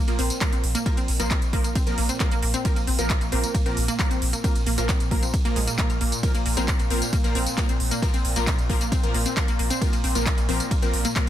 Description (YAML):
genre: driving peak-time techno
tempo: 134 BPM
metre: 4/4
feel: straight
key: unclear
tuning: A4 = 439 Hz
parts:
  - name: swarming drone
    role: drone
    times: 0.2-11.3 s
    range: Bb2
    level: -34 LUFS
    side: equal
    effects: built-in reverb, sidechain pumping
  - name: resonant blip pluck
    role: riff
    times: 0.1-11.2 s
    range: Ab3 to Bb4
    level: -30 LUFS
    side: left 1 dB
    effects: chorus, tube saturation, sidechain pumping, ping-pong delay
  - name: rave stab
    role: stabs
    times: 0.1-11.2 s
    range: F3 to Bb4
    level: -30 LUFS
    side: equal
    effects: chorus, built-in reverb, sidechain pumping, ping-pong delay
  - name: warm sub bass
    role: bass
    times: 0.1-11.3 s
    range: Bb1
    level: -27 LUFS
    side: equal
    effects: sidechain pumping, low-pass filter
  - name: techno drum kit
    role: drums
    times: 0.1-11.2 s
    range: handclaps, hi-hat, ride cymbal, tambourine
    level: -28 LUFS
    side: right 1 dB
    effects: sidechain pumping on hats, sidechain pumping on perc, sidechain pumping on cymbals
  - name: electronic kick drum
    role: drums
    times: 0.4-11.2 s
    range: none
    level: -24 LUFS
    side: equal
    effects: overdrive
room: light reverb, digital ambience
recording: dense, heavily limited modern master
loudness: -21 LUFS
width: side -12 dB against mid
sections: 0.0-11.3 A section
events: none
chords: 0.0 Bb5